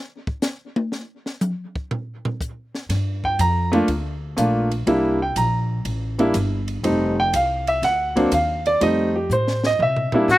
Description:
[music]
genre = jazz, small-group swing and bop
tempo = 122 BPM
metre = 4/4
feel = swing 69% on 8ths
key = F mixolydian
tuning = A4 = 440 Hz
[part]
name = compact cocktail drum kit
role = drums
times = 0.3-10.4 s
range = hi-hat, kick drum, ride cymbal, snare drum, toms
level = -28 LUFS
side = equal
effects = none
[part]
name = upright bass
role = bass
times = 2.9-10.4 s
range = F1 to C3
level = -24 LUFS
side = equal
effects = none
[part]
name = warm grand piano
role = accompaniment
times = 3.2-10.4 s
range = F#3 to Bb5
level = -19 LUFS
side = right 1 dB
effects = none
[part]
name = trumpet with metal mute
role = melody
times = 10.3-10.4 s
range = G4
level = -11 LUFS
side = left 2 dB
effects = none
[sound]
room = little or no reverb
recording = recorded outdoors, with no room sound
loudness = -19 LUFS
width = side -16 dB against mid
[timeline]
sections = 0.0-10.4 A section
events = drum solo 0.0-2.9; drum fill 9.3-10.3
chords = 0.0 N.C.; 2.9 Gm7; 4.9 C9; 6.8 F9; 7.8 Daug7; 8.8 F9; 9.8 C9

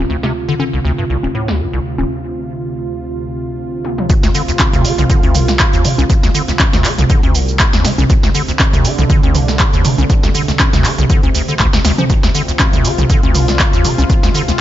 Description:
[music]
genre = acid house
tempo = 120 BPM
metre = 4/4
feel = swing 55% on 16ths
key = D minor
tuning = A4 = 439 Hz
[part]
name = warm analog pad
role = sustained chords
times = 0.0-14.6 s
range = D2 to F4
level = -20 LUFS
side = right 2 dB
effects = chorus, sidechain pumping
[part]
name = acid bass, square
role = riff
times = 0.0-14.5 s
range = D1 to F3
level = -16 LUFS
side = equal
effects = analog chorus
[part]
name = punchy analog drum machine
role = drums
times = 0.2-14.6 s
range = congas, handclaps, hi-hat, shaker, snare drum, toms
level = -16 LUFS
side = equal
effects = low-pass filter on hats, low-pass filter on toms, low-pass filter on perc, low-pass filter on snare, low-pass filter on room
[part]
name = electronic kick drum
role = drums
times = 4.1-14.2 s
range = none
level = -13 LUFS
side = equal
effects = none
[sound]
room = light reverb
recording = nothing above 7.5 kHz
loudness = -11 LUFS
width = side -12 dB against mid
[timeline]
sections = 0.0-4.1 A section; 4.1-14.6 B section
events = filter sweep on analog synth pad 0.0-4.1; break 2.1-4.1; drum fill 3.8; drop 4.1-14.6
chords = 0.0 Dm7

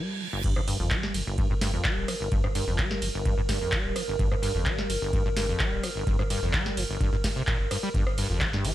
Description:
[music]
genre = acid house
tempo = 128 BPM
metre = 4/4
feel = straight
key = G minor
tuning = A4 = 440 Hz
[part]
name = acid bass, saw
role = riff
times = 0.0-8.7 s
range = G1 to G3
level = -31 LUFS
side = equal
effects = ensemble chorus, cassette tape, sidechain pumping, digital delay
[part]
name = warbly tape-like pad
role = sustained chords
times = 0.8-8.7 s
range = G4 to Bb4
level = -35 LUFS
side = right 1 dB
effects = chorus, built-in reverb, sidechain pumping
[part]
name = round analog bass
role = bass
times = 0.4-8.7 s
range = D1 to G1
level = -32 LUFS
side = equal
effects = sidechain pumping
[part]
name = booming analog drum machine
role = drums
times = 0.4-8.7 s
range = crash cymbal, handclaps, hi-hat, ride cymbal, rim click, snare drum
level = -31 LUFS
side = right 1 dB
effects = none
[part]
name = electronic kick drum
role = drums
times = 0.4-8.5 s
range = none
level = -28 LUFS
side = equal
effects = none
[sound]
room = digital ambience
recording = none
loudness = -24 LUFS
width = side -14 dB against mid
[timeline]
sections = 0.4-8.7 A section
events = break 0.0-0.4; drop 0.4-8.7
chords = 0.4 Gm

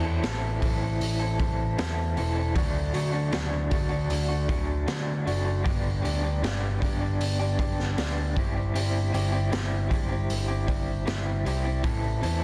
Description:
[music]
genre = quiet-loud alternative rock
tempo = 78 BPM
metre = 4/4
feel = straight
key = A dorian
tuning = A4 = 440 Hz
[part]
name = electric guitar through a small old amp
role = arpeggios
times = 0.0-12.4 s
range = G2 to A4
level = -33 LUFS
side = equal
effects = tremolo, tape echo, plate reverb
[part]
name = overdriven picked electric bass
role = bass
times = 0.0-12.4 s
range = E1 to E2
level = -30 LUFS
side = equal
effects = none
[part]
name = raw garage drum kit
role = drums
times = 0.2-12.4 s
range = hi-hat, kick drum, snare drum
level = -33 LUFS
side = equal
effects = none
[sound]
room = light reverb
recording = dense, heavily limited modern master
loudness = -27 LUFS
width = mono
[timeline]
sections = 0.0-12.4 A section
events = none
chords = 0.0 Am; 2.6 D; 5.7 G; 8.4 C/G; 11.8 Am

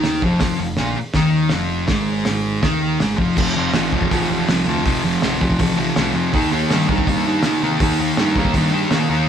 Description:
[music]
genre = garage rock duo or trio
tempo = 162 BPM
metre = 4/4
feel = straight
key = unclear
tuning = A4 = 441 Hz
[part]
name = fuzz guitar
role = riff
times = 0.0-9.3 s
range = F2 to Eb4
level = -18 LUFS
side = equal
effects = distortion
[part]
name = fuzz picked electric bass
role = bass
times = 0.0-9.2 s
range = F1 to C3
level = -26 LUFS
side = equal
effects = overdrive
[part]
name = cloth-damped thuddy drum kit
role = drums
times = 0.0-9.0 s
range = crash cymbal, hi-hat, kick drum, snare drum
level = -22 LUFS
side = right 1 dB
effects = none
[sound]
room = moderate studio reverb, RT60 0.6 s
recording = band playing live in one room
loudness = -16 LUFS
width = side -8 dB against mid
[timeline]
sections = 0.0-3.4 A section; 3.4-9.3 B section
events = none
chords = 0.0 Fm7; 3.4 F; 6.3 Eb

